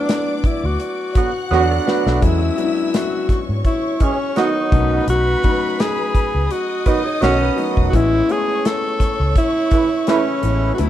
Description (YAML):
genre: lush 1970s-style soul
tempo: 84 BPM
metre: 4/4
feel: swing 54% on 16ths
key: unclear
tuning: A4 = 438 Hz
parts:
  - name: breathy tenor saxophone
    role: melody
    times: 0.0-10.9 s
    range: C#4 to A4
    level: -20 LUFS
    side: equal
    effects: none
  - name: warm studio string section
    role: second line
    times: 0.0-10.9 s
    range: B4 to F#6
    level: -28 LUFS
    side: left 4 dB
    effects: none
  - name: clear concert grand piano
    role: accompaniment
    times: 0.0-10.9 s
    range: F#3 to F#4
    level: -26 LUFS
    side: left 8 dB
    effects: none
  - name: modern studio drum kit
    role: drums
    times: 0.1-10.9 s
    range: hi-hat, kick drum, snare drum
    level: -19 LUFS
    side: equal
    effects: none
  - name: vintage muted fingered electric bass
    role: bass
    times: 0.4-10.9 s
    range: E1 to G#2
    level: -19 LUFS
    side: equal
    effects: none
  - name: mellow horn section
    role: stabs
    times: 1.2-10.8 s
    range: C#3 to G#4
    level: -20 LUFS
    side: right 6 dB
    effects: none
  - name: mellow electric guitar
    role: riff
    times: 1.7-2.4, 6.9-7.9 s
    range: E4 to D#5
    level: -26 LUFS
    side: right 8 dB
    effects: none
room: light reverb, small room ambience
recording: rough home demo mix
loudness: -15 LUFS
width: side -12 dB against mid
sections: 0.0-10.9 A section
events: drum fill 1.5-2.2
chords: 0.0 D6; 2.2 E6; 4.7 B7; 7.9 Amaj7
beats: 0.08 0.80 1.51 | 2.22 2.94 3.65 4.37 | 5.08 5.79 6.51 7.22 | 7.94 8.65 9.36 10.08 | 10.79